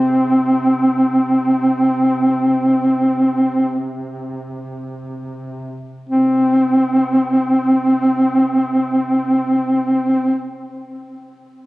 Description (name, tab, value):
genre	caucasian folk, Caucasian lament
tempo	free time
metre	none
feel	none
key	unclear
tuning	A4 = 440 Hz
part	mellow duduk	melody	0.0-10.4 s	C4	-14 LUFS	equal	none
part	mellow duduk	drone	0.0-10.5 s	C3	-32 LUFS	right 1 dB	none
room	moderate church reverb, RT60 3.7 s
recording	recorded on a phone in the room, studio reverb, compression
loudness	-14 LUFS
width	side -19 dB against mid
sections	0.0-6.1 A section; 6.1-9.7 B section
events	slowing down 0.0-6.1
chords	none